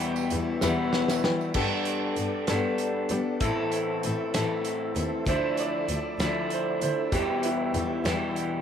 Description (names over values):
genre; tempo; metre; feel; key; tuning
folk rock and heartland rock; 64 BPM (dotted quarters); 6/8; straight; unclear; A4 = 441 Hz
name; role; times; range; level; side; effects
clear upright piano; second line; 0.0-0.3, 5.3-7.7 s; E4 to G5; -32 LUFS; right 8 dB; analog delay
dark grand piano; accompaniment; 0.0-8.6 s; G4 to G5; -38 LUFS; left 11 dB; none
picked steel-string acoustic guitar; accompaniment; 0.0-8.6 s; E2 to A4; -31 LUFS; left 4 dB; none
tonewheel organ; sustained chords; 0.0-8.6 s; E4 to E5; -37 LUFS; right 1 dB; slow rotary speaker, chorus vibrato
electric guitar through a small old amp; riff; 0.0-8.6 s; E2 to A4; -29 LUFS; equal; none
tambourine; percussion; 0.2-1.5 s; none; -41 LUFS; right 16 dB; none
warm double bass; bass; 0.3-8.1 s; D2 to G3; -33 LUFS; equal; none
loose indie drum kit; drums; 0.3-8.5 s; crash cymbal, hi-hat, kick drum, snare drum; -32 LUFS; right 1 dB; none
room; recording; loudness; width
light reverb, studio ambience; none; -25 LUFS; side -8 dB against mid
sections
0.0-1.6 A section; 1.6-8.6 B section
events
drum fill 0.6-1.6; grand piano fill 0.6-1.6, 8.1-8.6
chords
0.0 Em; 1.6 Gadd9; 3.4 Am; 5.3 Dmadd9; 7.1 Em